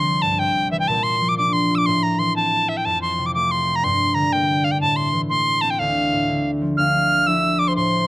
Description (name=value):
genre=celtic folk, Celtic polka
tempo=122 BPM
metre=2/4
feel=swing 65% on 8ths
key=D minor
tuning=A4 = 440 Hz
part: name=bright reedy tin whistle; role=melody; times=0.0-8.1 s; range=E5 to F6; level=-19 LUFS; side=equal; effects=none
part: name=concert harp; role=accompaniment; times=0.0-8.1 s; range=C2 to F4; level=-22 LUFS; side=equal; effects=none
part: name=mellow wooden flute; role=second line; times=6.8-8.1 s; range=C5 to F5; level=-26 LUFS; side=right 2 dB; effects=none
room=little or no reverb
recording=recorded outdoors, with no room sound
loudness=-17 LUFS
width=side -18 dB against mid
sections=0.0-6.8 A section; 6.8-8.1 B section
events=none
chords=0.0 C; 0.9 Bb; 1.9 Am; 2.8 F; 3.8 Gm; 4.8 Am; 5.8 Dm; 6.8 Dmadd9